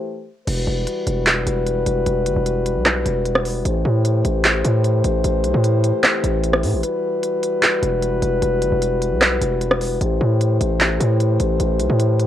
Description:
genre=hip hop, trap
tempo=151 BPM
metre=4/4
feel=half-time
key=E minor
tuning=A4 = 440 Hz
part: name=mellow French horn section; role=sustained chords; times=0.0-12.3 s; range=E3 to C5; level=-21 LUFS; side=left 3 dB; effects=stereo widening, cassette tape
part: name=distorted 808-style bass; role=bass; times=0.5-12.3 s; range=E1 to A2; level=-20 LUFS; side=right 1 dB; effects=distortion
part: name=trap drum kit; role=drums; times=0.5-12.3 s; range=crash cymbal, handclaps, hi-hat, rim click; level=-19 LUFS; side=right 1 dB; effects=none
room=digital ambience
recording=home recording on cassette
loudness=-16 LUFS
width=side -11 dB against mid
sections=0.5-12.3 A section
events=break 0.0-0.5, 6.8-7.6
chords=0.5 Emadd9; 3.7 Am7; 6.8 Emadd9; 10.0 Am7

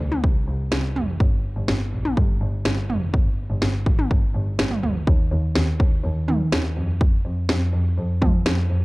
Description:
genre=synth-pop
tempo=124 BPM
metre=4/4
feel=straight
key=unclear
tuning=A4 = 442 Hz
part: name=rich double bass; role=bass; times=0.0-8.8 s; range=F1 to F3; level=-23 LUFS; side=equal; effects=none
part: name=house drum kit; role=drums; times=0.1-8.6 s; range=kick drum, snare drum, toms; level=-21 LUFS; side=equal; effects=none
room=little or no reverb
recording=cassette tape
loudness=-19 LUFS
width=side -22 dB against mid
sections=0.0-5.1 A section; 5.1-8.8 B section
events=none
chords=none

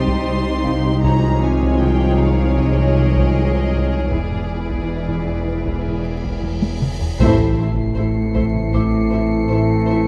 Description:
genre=cinematic, suspense film score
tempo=78 BPM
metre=4/4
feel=straight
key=unclear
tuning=A4 = 441 Hz
part: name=rich symphonic violin section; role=melody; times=0.0-10.0 s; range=D5 to C6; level=-34 LUFS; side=equal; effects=none
part: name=rich studio violin section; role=second line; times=0.0-9.9 s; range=G4 to Db5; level=-32 LUFS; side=equal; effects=none
part: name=dark studio viola section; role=accompaniment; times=0.0-10.0 s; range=E3 to E4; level=-27 LUFS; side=equal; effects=none
part: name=buzzing marimba with soft mallets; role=riff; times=0.0-10.1 s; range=E2 to C4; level=-27 LUFS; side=equal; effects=none
part: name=warm studio cello section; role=bass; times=0.0-10.1 s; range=E2 to C3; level=-26 LUFS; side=equal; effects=none
part: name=warm studio double bass section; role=bass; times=0.0-10.1 s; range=E1 to C2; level=-26 LUFS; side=equal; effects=none
part: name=sub bass with octave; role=drone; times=0.0-10.1 s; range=E1 to C2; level=-27 LUFS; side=equal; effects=none
part: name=warm studio violin section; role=texture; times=0.0-10.1 s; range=Eb6 to D7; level=-40 LUFS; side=equal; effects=none
part: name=worn celesta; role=texture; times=0.0-10.1 s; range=Ab4 to D6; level=-39 LUFS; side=equal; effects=none
part: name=taiko ensemble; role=drums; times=0.1-9.5 s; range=none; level=-27 LUFS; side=equal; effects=none
part: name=dark French horn section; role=sustained chords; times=1.0-10.1 s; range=B3 to Db5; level=-28 LUFS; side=equal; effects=none
part: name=warm trombone section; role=sustained chords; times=1.0-10.1 s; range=Eb3 to A3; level=-28 LUFS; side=equal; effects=none
part: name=cymbal swell and sub drop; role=sound effects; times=5.8-10.1 s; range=none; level=-32 LUFS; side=equal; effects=none
part: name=timpani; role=percussion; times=7.2-8.3 s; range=A2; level=-28 LUFS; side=equal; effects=none
room=moderate scoring stage reverb, RT60 1.6 s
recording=dark, warm production, vinyl crackle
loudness=-18 LUFS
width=mono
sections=0.0-7.2 A section; 7.2-10.1 B section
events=cymbal swell 5.8-7.2; drum fill 6.4-7.2; band accent 7.2-8.0; impact 7.2-10.1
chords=0.0 Cm; 1.0 Dbadd9/C; 4.1 E7; 7.2 Am

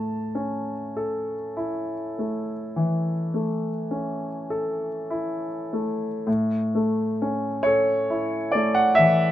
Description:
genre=classical, romantic nocturne for solo piano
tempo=31-46 BPM (dotted quarters)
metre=12/8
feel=rubato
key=A major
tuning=A4 = 440 Hz
part: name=clear grand piano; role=solo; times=0.0-9.3 s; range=A2 to A5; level=-22 LUFS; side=equal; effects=none
room=light reverb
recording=close, detailed microphones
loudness=-23 LUFS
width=side -12 dB against mid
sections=0.0-6.3 A section; 6.3-9.3 A section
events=none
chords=0.0 A

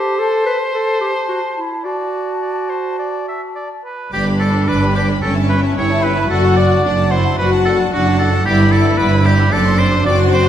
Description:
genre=quick classical-period movement for symphony orchestra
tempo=109 BPM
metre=4/4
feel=uneven beats, rubato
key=unclear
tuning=A4 = 441 Hz
part: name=bright clarinet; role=second line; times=0.0-3.9 s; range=E4 to B4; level=-20 LUFS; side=right 1 dB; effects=none
part: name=clear oboe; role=second line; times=0.0-10.5 s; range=F#4 to E5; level=-20 LUFS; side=equal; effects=none
part: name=mellow hollow concert flute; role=second line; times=0.0-3.8 s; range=A5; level=-24 LUFS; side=left 3 dB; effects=none
part: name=clear studio violin section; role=melody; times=4.1-10.5 s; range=F#5 to D6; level=-27 LUFS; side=left 4 dB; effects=none
part: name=rich studio violin section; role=second line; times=4.1-10.5 s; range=B3 to F#5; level=-24 LUFS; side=left 3 dB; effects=none
part: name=rich studio viola section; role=accompaniment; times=4.1-10.5 s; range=C#4 to F#4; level=-18 LUFS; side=left 2 dB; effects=none
part: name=rich studio cello section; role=bass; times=4.1-10.5 s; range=F#2 to G2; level=-20 LUFS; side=right 1 dB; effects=none
part: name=rich studio double bass section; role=bass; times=4.1-10.5 s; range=F#1 to G1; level=-17 LUFS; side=right 2 dB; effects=none
room=moderate scoring stage reverb, RT60 1.6 s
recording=none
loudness=-13 LUFS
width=side -10 dB against mid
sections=0.0-4.1 A section; 4.1-10.5 B section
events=none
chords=0.0 Am; 1.8 D/F#; 4.1 G; 5.2 A7/G; 6.3 D/F#; 8.5 G; 9.5 D7/F#

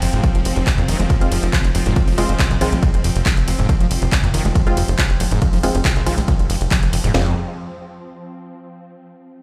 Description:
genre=driving peak-time techno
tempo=139 BPM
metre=4/4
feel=straight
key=F minor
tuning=A4 = 440 Hz
part: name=screaming distorted acid line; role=riff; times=0.0-7.3 s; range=F2 to Ab3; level=-26 LUFS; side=equal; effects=distortion, chorus, sidechain pumping, digital delay
part: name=tight sequencer bass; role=bass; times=0.0-7.3 s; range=F1 to F2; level=-22 LUFS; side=equal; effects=sidechain pumping
part: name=swarming drone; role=drone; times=0.0-7.2 s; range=F3 to C4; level=-30 LUFS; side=equal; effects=built-in reverb, phaser, sidechain pumping
part: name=techno drum kit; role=drums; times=0.0-7.1 s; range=handclaps, hi-hat, ride cymbal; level=-27 LUFS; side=equal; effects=none
part: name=techno drum kit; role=drums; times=0.2-7.2 s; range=kick drum, snare drum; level=-20 LUFS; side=equal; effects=none
part: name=filtered dub chord stab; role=stabs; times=1.2-7.3 s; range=Ab3 to F4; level=-26 LUFS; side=equal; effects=chorus, sidechain pumping, digital delay
room=light reverb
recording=played on a big sound system in a bare room, stone room reverb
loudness=-17 LUFS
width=mono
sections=0.0-7.1 A section; 7.1-8.9 B section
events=drop 0.0-7.1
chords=0.0 Fm

